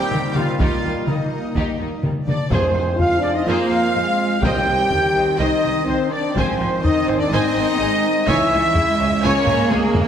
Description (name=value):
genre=cinematic, epic orchestral film score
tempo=125 BPM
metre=4/4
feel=straight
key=unclear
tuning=A4 = 440 Hz
part: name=warm symphonic violin section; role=melody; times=0.0-10.0 s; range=Ab4 to G5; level=-30 LUFS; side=left 4 dB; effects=none
part: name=rich symphonic viola section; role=accompaniment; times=0.0-9.8 s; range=Bb3 to Ab5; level=-28 LUFS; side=right 1 dB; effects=none
part: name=bright trombone section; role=sustained chords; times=0.0-10.1 s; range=Bb2 to C4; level=-30 LUFS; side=right 2 dB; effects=none
part: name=mellow French horn section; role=sustained chords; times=0.0-9.9 s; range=Ab3 to G4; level=-22 LUFS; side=left 3 dB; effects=none
part: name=dark trumpet section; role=stabs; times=0.0-10.0 s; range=Eb4 to G5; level=-24 LUFS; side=right 2 dB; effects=none
part: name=rich symphonic violin section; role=second line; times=0.1-10.0 s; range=G3 to G5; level=-29 LUFS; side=left 2 dB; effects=none
part: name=rich symphonic cello section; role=bass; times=0.1-10.1 s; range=Eb3 to C4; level=-26 LUFS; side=right 3 dB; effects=none
part: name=rich symphonic double bass section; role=bass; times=0.1-9.8 s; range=Ab1 to F2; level=-28 LUFS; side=right 3 dB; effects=none
part: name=taiko ensemble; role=drums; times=0.1-10.1 s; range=none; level=-23 LUFS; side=equal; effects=none
part: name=concert flute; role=second line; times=2.3-10.0 s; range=Ab4 to G5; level=-27 LUFS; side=equal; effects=none
part: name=timpani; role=percussion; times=2.5-5.1 s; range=F2 to C3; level=-27 LUFS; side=equal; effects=none
room=wet scoring stage reverb, RT60 1.6 s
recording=none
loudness=-16 LUFS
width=side -8 dB against mid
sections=0.0-2.5 A section; 2.5-10.1 B section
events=drum fill 9.5-10.1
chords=0.0 Eb; 2.5 Fm; 4.4 Cm; 6.4 Ab; 8.3 Dbm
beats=0.11 | 0.59 1.07 1.55 2.04 | 2.52 3.00 3.48 3.96 | 4.44 4.92 5.40 5.88 | 6.36 6.84 7.32 7.80 | 8.28 8.76 9.24 9.72